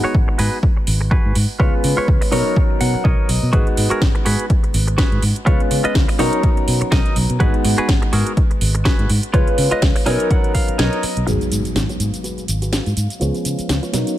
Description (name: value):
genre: filtered disco house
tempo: 124 BPM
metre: 4/4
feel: swing 56% on 16ths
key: G# dorian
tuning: A4 = 440 Hz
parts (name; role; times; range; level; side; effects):
- warm grand piano; accompaniment; 0.0-14.2 s; E#3 to B4; -22 LUFS; left 1 dB; phaser, sidechain pumping, low-pass filter
- direct-recorded clean electric guitar; riff; 0.0-14.2 s; D#4 to G#5; -25 LUFS; right 1 dB; sidechain pumping, low-pass filter
- fingered electric bass; bass; 0.0-14.0 s; G#1 to C#3; -19 LUFS; equal; sidechain pumping, low-pass filter
- electronic kick drum; drums; 0.1-10.7 s; none; -17 LUFS; equal; overdrive
- house drum kit; drums; 0.4-14.2 s; cabasa, hi-hat, snare drum; -24 LUFS; equal; sidechain pumping on hats, sidechain pumping on perc
- rich symphonic string section; sustained chords; 11.3-14.2 s; E#5; -42 LUFS; left 2 dB; sidechain pumping, low-pass filter
- impact; sound effects; 11.3-13.2 s; none; -29 LUFS; equal; none
room: little or no reverb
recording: none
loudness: -15 LUFS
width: side -13 dB against mid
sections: 0.0-11.3 A section; 11.3-14.2 B section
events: clean electric guitar fill 2.6-3.5, 9.8-11.3; kick drops out 10.8-11.3; impact 11.3-13.2; filter sweep 11.3-14.2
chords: 0.0 G#m7; 1.6 C#7; 2.3 Bmaj9; 3.5 G#m7; 5.5 C#7; 6.2 Bmaj9; 7.4 G#m7; 9.3 C#7; 10.1 Bmaj9; 11.3 G#m7; 13.2 C#7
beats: 0.15 0.63 1.11 | 1.60 2.08 2.56 3.05 | 3.53 4.02 4.50 4.99 | 5.47 5.95 6.44 6.92 | 7.40 7.89 8.37 8.86 | 9.34 9.82 10.31 10.79 | 11.28 11.76 12.24 12.73 | 13.21 13.70 14.18